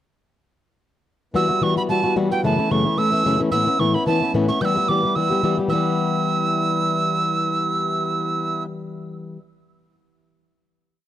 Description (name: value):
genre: celtic folk, Celtic reel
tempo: 221 BPM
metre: 4/4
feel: swing 53% on 8ths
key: E dorian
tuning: A4 = 437 Hz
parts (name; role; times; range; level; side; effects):
- fingerpicked plugged-in swing-style acoustic guitar; accompaniment; 1.3-9.4 s; F#2 to G4; -21 LUFS; left 3 dB; none
- mellow accordion; drone; 1.3-8.7 s; E3 to B3; -31 LUFS; left 1 dB; none
- tin whistle; melody; 1.4-8.6 s; G5 to G6; -22 LUFS; right 4 dB; none
room: small room reverb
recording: dry, close 1970s-style studio recording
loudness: -18 LUFS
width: side -12 dB against mid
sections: 1.3-5.7 A section; 5.7-7.9 final chord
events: none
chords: 1.3 Emadd9; 2.4 F#m7; 3.5 Aadd9; 4.6 Em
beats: | 1.34 1.62 1.89 2.17 | 2.44 2.71 2.98 3.26 | 3.53 3.80 4.07 4.34 | 4.62 4.89 5.16 5.43 | 5.70 5.97 6.24 6.51 | 6.79 7.06 7.33 7.60